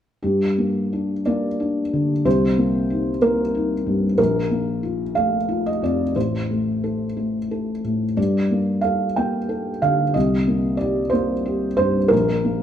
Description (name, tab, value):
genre	classical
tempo	61 BPM (dotted quarters)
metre	6/8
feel	rubato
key	G minor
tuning	A4 = 439 Hz
part	felt-muted upright piano	accompaniment	0.2-12.6 s	A1 to G5	-18 LUFS	equal	none
room	wet large studio reverb, RT60 1.4 s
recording	band playing live in one room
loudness	-19 LUFS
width	side -10 dB against mid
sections	0.2-12.6 A section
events	none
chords	0.2 Gm; 2.2 Cm7; 4.2 Bb5; 6.2 N.C.; 8.2 Gmadd9; 10.1 Cm7; 12.1 Bb5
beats	| 0.23 1.26 | 2.25 3.22 | 4.18 5.15 | 6.15 7.17 | 8.17 9.16 | 10.15 11.13 | 12.11